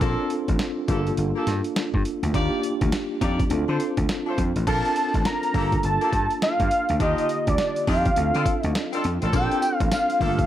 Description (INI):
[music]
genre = R&B, new jack swing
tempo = 103 BPM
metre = 4/4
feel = swing 62% on 16ths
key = Bb major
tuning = A4 = 439 Hz
[part]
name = tine electric piano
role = accompaniment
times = 0.0-10.5 s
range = D3 to A4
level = -27 LUFS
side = equal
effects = medium stereo tremolo
[part]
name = warm horn section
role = stabs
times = 0.0-10.4 s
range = Bb3 to D5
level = -31 LUFS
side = left 1 dB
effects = none
[part]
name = vintage slap bass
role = bass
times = 0.0-10.4 s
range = G1 to D3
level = -25 LUFS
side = equal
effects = none
[part]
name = boom bap sampler-style drum kit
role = drums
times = 0.0-10.5 s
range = crash cymbal, hi-hat, kick drum, snare drum, tambourine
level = -26 LUFS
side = equal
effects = overdrive
[part]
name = fat analog lead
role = melody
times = 4.7-10.5 s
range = D5 to Bb5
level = -24 LUFS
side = equal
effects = chorus
[sound]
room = light reverb, digital ambience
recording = none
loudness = -21 LUFS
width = side -12 dB against mid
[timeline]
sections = 0.0-4.7 A section; 4.7-10.5 B section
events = none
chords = 0.0 Bbmaj7; 0.9 Gm9; 2.3 Ebmaj9; 3.5 Dm7; 4.7 Bbmaj7; 5.5 Gm9; 7.0 Ebmaj9; 8.2 Dm7; 9.3 Bbmaj7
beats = | 0.01 0.59 1.18 1.76 | 2.34 2.92 3.51 4.09 | 4.67 5.25 5.84 6.42 | 7.00 7.58 8.17 8.75 | 9.33 9.91